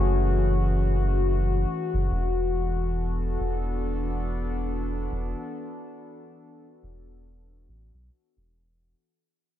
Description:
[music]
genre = ambient dub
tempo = 70 BPM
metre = 4/4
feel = swing 60% on 16ths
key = unclear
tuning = A4 = 439 Hz
[part]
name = warbly tape-like pad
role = sustained chords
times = 0.0-9.0 s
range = E3 to A4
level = -29 LUFS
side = left 4 dB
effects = chorus, built-in reverb, vintage 12-bit sampler grit
[part]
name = soft dub sub bass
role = bass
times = 0.0-8.9 s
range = E1 to B1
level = -26 LUFS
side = equal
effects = none
[sound]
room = light reverb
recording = none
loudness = -24 LUFS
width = side -11 dB against mid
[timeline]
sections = 0.0-9.0 A section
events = fade-out 0.0-9.0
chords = 0.0 F#m9; 2.1 E9sus4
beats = 0.40 1.26 | 2.11 2.97 3.83 4.69 | 5.54 6.40 7.26 8.11

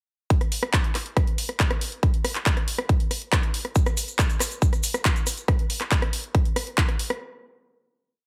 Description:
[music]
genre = trance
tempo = 139 BPM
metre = 4/4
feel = straight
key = none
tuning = none
[part]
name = big-room dance drum kit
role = drums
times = 0.3-7.2 s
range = handclaps, hi-hat, rim click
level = -29 LUFS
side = equal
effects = overdrive
[part]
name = electronic kick drum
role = drums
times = 0.3-6.9 s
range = none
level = -24 LUFS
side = equal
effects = overdrive
[part]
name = tube shaker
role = percussion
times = 3.8-5.5 s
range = none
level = -33 LUFS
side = equal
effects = none
[sound]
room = digital ambience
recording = none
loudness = -24 LUFS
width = mono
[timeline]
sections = 0.3-7.2 groove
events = none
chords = none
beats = | 0.30 0.73 1.17 1.60 | 2.03 2.46 2.89 3.32 | 3.76 4.19 4.62 5.05 | 5.48 5.91 6.35 6.78

